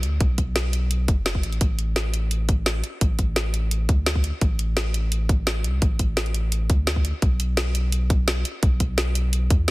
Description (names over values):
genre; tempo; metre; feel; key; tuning
liquid drum and bass; 171 BPM; 4/4; straight; B phrygian; A4 = 440 Hz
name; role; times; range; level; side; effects
warm sub bass; bass; 0.0-9.7 s; F#1 to E2; -23 LUFS; equal; none
drum and bass drum kit; drums; 0.0-9.7 s; hi-hat, snare drum; -26 LUFS; equal; none
electronic kick drum; drums; 0.2-9.6 s; none; -20 LUFS; equal; none
room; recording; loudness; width
little or no reverb; dense, heavily limited modern master; -20 LUFS; side -20 dB against mid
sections
0.0-9.7 A section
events
none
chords
none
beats
| 0.21 0.56 0.91 1.26 | 1.61 1.96 2.31 2.66 | 3.01 3.37 3.72 4.07 | 4.42 4.77 5.12 5.47 | 5.82 6.17 6.52 6.87 | 7.22 7.58 7.93 8.28 | 8.63 8.98 9.33 9.68